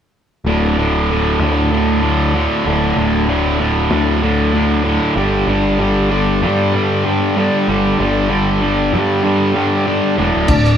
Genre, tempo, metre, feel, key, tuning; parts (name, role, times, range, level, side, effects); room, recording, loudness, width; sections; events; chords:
classic rock; 96 BPM; 4/4; straight; A4 = 440 Hz
growling picked electric bass; bass; 0.4-10.8 s; D1 to G2; -19 LUFS; equal; overdrive
distorted electric guitar; riff; 0.5-10.8 s; D2 to G3; -14 LUFS; equal; distortion
overdriven tonewheel organ; melody; 10.5-10.8 s; D4; -15 LUFS; left 4 dB; slow rotary speaker, chorus vibrato
vintage drum kit; drums; 10.5-10.7 s; crash cymbal, kick drum, snare drum; -16 LUFS; equal
moderate studio reverb, RT60 0.7 s; band playing live in one room; -13 LUFS; side -8 dB against mid
0.4-10.5 A section
0.4 D5; 5.2 G5; 10.2 D5